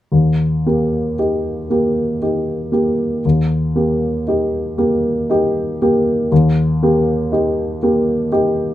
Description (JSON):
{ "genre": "classical", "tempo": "59 BPM", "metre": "3/4", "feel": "rubato", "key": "Eb major", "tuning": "A4 = 443 Hz", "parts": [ { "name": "warm baby grand piano", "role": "accompaniment", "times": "0.1-8.7 s", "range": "Eb2 to G4", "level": "-14 LUFS", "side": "equal", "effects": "none" } ], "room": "little or no reverb", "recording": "close, detailed microphones", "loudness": "-14 LUFS", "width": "side -13 dB against mid", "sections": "0.1-8.7 A section", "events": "none", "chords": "0.1 Eb", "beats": "| 0.12 1.18 2.22 | 3.24 4.27 5.30 | 6.31 7.32 8.32" }